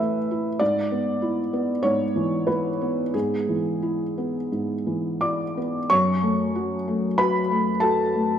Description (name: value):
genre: neoclassical minimalist piano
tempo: 82-99 BPM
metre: 4/4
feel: rubato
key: F# minor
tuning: A4 = 440 Hz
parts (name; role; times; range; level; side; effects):
- felt-muted upright piano; solo; 0.0-8.4 s; F#2 to D6; -21 LUFS; equal; none
room: wet recital hall reverb, RT60 1.6 s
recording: recorded in a church or concert hall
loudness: -21 LUFS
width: side -9 dB against mid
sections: 0.0-5.9 A section; 5.9-8.4 B section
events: none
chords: 0.0 A; 0.6 E/G#; 5.9 F#m